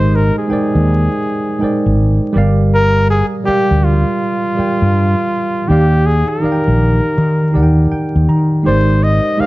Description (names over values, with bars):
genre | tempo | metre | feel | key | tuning
R&B, neo-soul | 81 BPM | 4/4 | swing 64% on 16ths | unclear | A4 = 440 Hz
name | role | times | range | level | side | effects
trumpet with bucket mute | melody | 0.0-9.5 s | F4 to F5 | -18 LUFS | left 1 dB | slapback echo
mellow tine electric piano | accompaniment | 0.0-9.5 s | Eb3 to Bb5 | -17 LUFS | right 2 dB | none
fretless electric bass | bass | 0.0-9.4 s | G1 to Eb3 | -12 LUFS | equal | none
room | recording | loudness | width
light reverb, studio ambience | vinyl crackle, nothing above 7.5 kHz | -11 LUFS | side -18 dB against mid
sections
0.0-9.5 A section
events
tine electric piano fill 7.5-8.6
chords
0.0 Abmaj9#11; 2.3 Gm7; 5.7 Ebmaj9; 8.6 Abmaj9#11